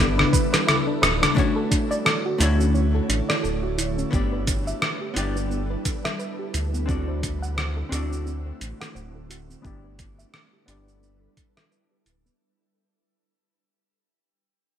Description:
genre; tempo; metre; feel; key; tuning
sunset chillout; 87 BPM; 4/4; swing 58% on 16ths; D major; A4 = 441 Hz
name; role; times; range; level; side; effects
clean electric guitar; melody; 0.0-0.6 s; none; barely audible; none; none
archtop guitar, miked and amplified; accompaniment; 0.0-12.4 s; G3 to D5; -30 LUFS; moving between left 5 dB and right 1 dB; auto-pan, low-pass filter, ping-pong delay, shimmer reverb
ethereal airy pad; sustained chords; 0.0-12.4 s; D3 to C#5; -31 LUFS; right 1 dB; ensemble chorus, built-in reverb, shimmer reverb
soft round pluck; arpeggios; 0.0-12.4 s; B3 to F#5; -30 LUFS; right 1 dB; chorus, ping-pong delay, shimmer reverb
round analog bass; bass; 0.0-12.3 s; D1 to D2; -26 LUFS; equal; none
dusty soul sampler-style drum kit; drums; 0.2-12.4 s; cabasa, congas, hi-hat, rim click; -23 LUFS; equal; overdrive, gated reverb
electronic kick drum; drums; 0.3-11.5 s; none; -25 LUFS; equal; overdrive
room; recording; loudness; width
moderate plate reverb, RT60 1.9 s, digital ambience; bright 1980s-style digital production; -21 LUFS; side -9 dB against mid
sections
0.0-1.4 A section; 1.4-12.4 B section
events
drum fill 0.0-1.4; fade-out 1.4-12.4; filter sweep on hollow-body jazz guitar 1.4-12.4; filter sweep on synth pluck 1.4-12.4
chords
0.0 G6; 1.4 Dmaj9; 4.1 G6; 6.9 D7; 9.6 G6

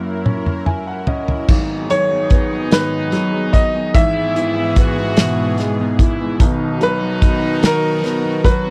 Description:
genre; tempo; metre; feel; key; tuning
six-eight pop ballad; 49 BPM (dotted quarters); 6/8; straight; G# minor; A4 = 441 Hz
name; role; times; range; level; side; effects
clear concert grand piano; melody; 0.0-8.7 s; A#4 to E5; -23 LUFS; equal; none
clear upright piano; accompaniment; 0.0-8.7 s; G#1 to G#5; -24 LUFS; equal; none
lush unison pad; sustained chords; 0.0-8.7 s; G#2 to A#4; -27 LUFS; equal; chorus
loose indie drum kit; drums; 0.3-8.6 s; crash cymbal, hi-hat, kick drum, snare drum, toms; -17 LUFS; equal; none
muted French horn section; second line; 1.5-8.7 s; D#4 to F#4; -28 LUFS; equal; none
fingerpicked steel-string acoustic guitar; arpeggios; 1.5-8.7 s; G#2 to B4; -28 LUFS; equal; none
room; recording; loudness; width
little or no reverb; dry, close 1970s-style studio recording; -17 LUFS; mono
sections
0.0-1.5 A section; 1.5-8.7 B section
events
drum fill 0.0-1.5; upright piano fill 0.3-1.5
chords
0.0 F#7; 1.5 G#m7; 3.9 Emaj7/G#; 6.4 B

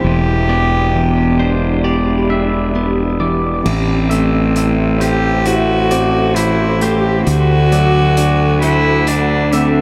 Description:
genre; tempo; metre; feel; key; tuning
post-rock; 66 BPM; 4/4; straight; A dorian; A4 = 440 Hz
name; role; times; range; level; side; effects
rich cello; melody; 0.0-9.8 s; C4 to G4; -20 LUFS; equal; tape echo
deep dark ambient pad; sustained chords; 0.0-9.8 s; G4 to D6; -27 LUFS; equal; chorus, built-in reverb
direct-recorded clean electric guitar; arpeggios; 0.0-9.8 s; A2 to G4; -22 LUFS; equal; vibrato effect, tape echo
twangy electric guitar; arpeggios; 0.0-9.8 s; A4 to E5; -27 LUFS; equal; analog chorus, tape echo
fuzz fingered electric bass; bass; 0.0-9.8 s; E1 to D2; -18 LUFS; equal; overdrive
loose indie drum kit; drums; 3.7-9.7 s; crash cymbal, hi-hat; -30 LUFS; equal; none
room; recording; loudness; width
wet cathedral reverb, RT60 5.9 s; dreamy mix soaked in reverb; -14 LUFS; mono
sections
0.0-3.7 A section; 3.7-9.8 B section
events
none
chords
0.0 Em7; 3.7 Am; 7.3 D

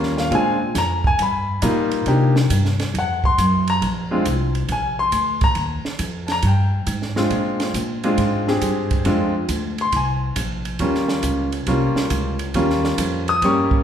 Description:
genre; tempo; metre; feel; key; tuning
jazz, small-group swing and bop; 137 BPM; 4/4; swing 67% on 8ths; unclear; A4 = 440 Hz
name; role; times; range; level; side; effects
bright grand piano; accompaniment; 0.0-13.8 s; G3 to Eb6; -20 LUFS; left 1 dB; none
upright bass; bass; 0.0-13.7 s; Bb1 to C3; -22 LUFS; equal; none
compact cocktail drum kit; drums; 0.0-13.8 s; hi-hat, kick drum, ride cymbal, snare drum; -26 LUFS; right 2 dB; none
room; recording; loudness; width
wet large studio reverb, RT60 1.3 s; heard from further back in the room; -18 LUFS; side -9 dB against mid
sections
0.0-3.8 A section; 3.8-13.8 A section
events
none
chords
0.3 Bb9; 1.2 G7alt; 2.1 Cm7; 2.9 F5; 3.8 Bb9; 5.6 Ebadd9; 7.3 Bb9; 10.8 Eb9

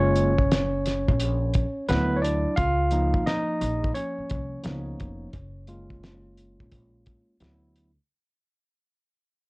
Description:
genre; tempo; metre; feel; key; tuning
hip hop, jazz-hop; 87 BPM; 4/4; swing 66% on 16ths; unclear; A4 = 440 Hz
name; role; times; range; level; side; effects
barky tine electric piano; accompaniment; 0.0-7.9 s; F3 to F5; -26 LUFS; equal; overdrive
upright bass; bass; 0.0-8.0 s; F1 to D2; -27 LUFS; equal; none
cloth-damped thuddy drum kit; drums; 0.2-8.0 s; hi-hat, kick drum, snare drum; -27 LUFS; equal; cassette tape
room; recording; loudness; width
little or no reverb; home recording on cassette; -22 LUFS; side -26 dB against mid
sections
0.0-8.1 A section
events
fade-out 0.0-8.1; tine electric piano solo 0.0-8.1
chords
0.0 Gbmaj7; 1.9 D69; 2.6 Db69; 4.6 Db13; 5.3 Gbmaj7; 7.4 D69

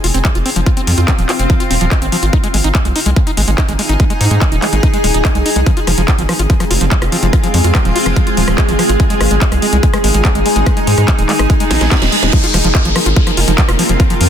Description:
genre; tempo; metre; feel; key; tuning
psychedelic trance; 144 BPM; 4/4; straight; F minor; A4 = 440 Hz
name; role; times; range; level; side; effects
screaming distorted acid line; riff; 0.0-14.2 s; F3 to F4; -20 LUFS; equal; distortion, chorus, auto-pan, sidechain pumping, tape echo
round analog bass; bass; 0.0-14.3 s; Eb1 to Ab2; -14 LUFS; equal; none
techno drum kit; drums; 0.0-14.3 s; crash cymbal, handclaps, hi-hat, rim click, snare drum; -19 LUFS; left 1 dB; small room ambience
granular cloud pad; texture; 0.0-14.3 s; C4 to Ab5; -19 LUFS; equal; built-in reverb, sidechain pumping
electronic kick drum; drums; 0.2-14.1 s; none; -13 LUFS; equal; small room ambience
evolving wavetable pad; sustained chords; 6.3-14.3 s; Ab3 to Bb4; -19 LUFS; equal; chorus, built-in reverb, sidechain pumping
reverse cymbal and downlifter; sound effects; 11.6-14.3 s; none; -19 LUFS; right 2 dB; none
room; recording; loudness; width
little or no reverb; dense, heavily limited modern master; -10 LUFS; side -9 dB against mid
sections
0.0-12.3 A section; 12.3-14.3 B section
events
reverse cymbal 11.6-12.3; drum fill 11.7-12.3; band accent 12.2; drop 12.3-14.3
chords
0.0 F5; 9.0 Ab5

